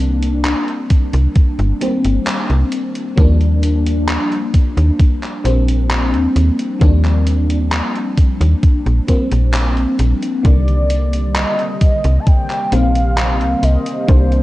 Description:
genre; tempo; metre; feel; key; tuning
vaporwave; 66 BPM; 4/4; straight; C minor; A4 = 442 Hz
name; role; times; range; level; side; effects
FM electric piano with soft pad layer; accompaniment; 0.0-14.4 s; D3 to D4; -19 LUFS; left 1 dB; phaser, ensemble chorus, tape echo
slap-like FM bass; bass; 0.0-14.4 s; G1 to Eb2; -14 LUFS; equal; tube saturation
gated 80s digital drum machine; drums; 0.2-14.4 s; handclaps, hi-hat; -24 LUFS; equal; gated reverb, vintage 12-bit sampler grit
electronic kick drum; drums; 0.9-14.3 s; none; -12 LUFS; equal; overdrive, vintage 12-bit sampler grit
lush unison pad; sustained chords; 10.4-14.4 s; C3 to C5; -27 LUFS; right 1 dB; chorus, vintage 12-bit sampler grit
warm velvety synth lead; melody; 10.5-14.4 s; C5 to A5; -21 LUFS; equal; chorus, vintage 12-bit sampler grit, tape echo
room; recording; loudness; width
digital ambience; cassette tape; -13 LUFS; side -17 dB against mid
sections
0.0-14.4 A section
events
break 9.5-10.4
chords
0.0 Cm9; 3.2 Ebmaj9; 10.4 Cm9

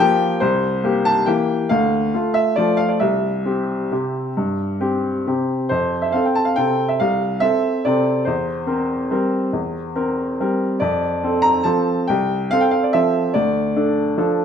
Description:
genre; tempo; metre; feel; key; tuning
classical, piano waltz; 129-151 BPM; 3/4; rubato; F major; A4 = 440 Hz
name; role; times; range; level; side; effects
bright upright piano; solo; 0.0-14.4 s; C2 to Bb5; -17 LUFS; equal; none
room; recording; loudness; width
wet recital hall reverb, RT60 1.5 s; close, detailed microphones; -17 LUFS; side -8 dB against mid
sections
0.0-5.7 A section; 5.7-14.4 B section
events
none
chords
0.4 C7; 1.7 Dm; 3.0 C; 5.7 F; 8.3 C7/E; 10.8 F; 13.3 Dm

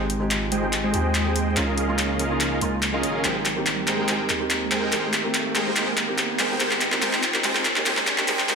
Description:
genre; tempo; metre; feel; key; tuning
future bass; 143 BPM; 4/4; half-time; unclear; A4 = 440 Hz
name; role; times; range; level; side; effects
felt-muted upright piano; accompaniment; 0.0-8.6 s; Ab3 to G4; -29 LUFS; right 1 dB; ping-pong delay
airy breathy pad; sustained chords; 0.0-8.6 s; Db3 to G4; -34 LUFS; right 2 dB; chorus
long sustained 808-style bass; bass; 0.0-8.6 s; Ab1 to Eb2; -32 LUFS; equal; none
riser; sound effects; 0.1-8.6 s; none; -33 LUFS; right 1 dB; none
big-room dance drum kit; drums; 0.1-8.6 s; handclaps, hi-hat; -23 LUFS; equal; high-pass filter on snare, studio reverb, high-pass filter on hats
supersaw chords; riff; 0.5-8.6 s; Ab3 to G5; -26 LUFS; right 1 dB; low-pass filter, ping-pong delay
room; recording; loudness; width
wet digital room reverb, RT60 1.1 s, digital ambience; dense, heavily limited modern master, high-pass filter; -20 LUFS; side -5 dB against mid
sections
0.0-8.6 A section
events
build-up 0.0-8.6; drum fill 0.0-8.6; filter sweep on supersaw synth 0.0-8.6; filter sweep on analog synth pad 0.0-8.6; filter sweep 0.0-8.6; riser 0.1-8.6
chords
0.0 Fm9/Ab; 1.6 Db69; 3.2 Abmaj9; 6.4 Fm9/Ab

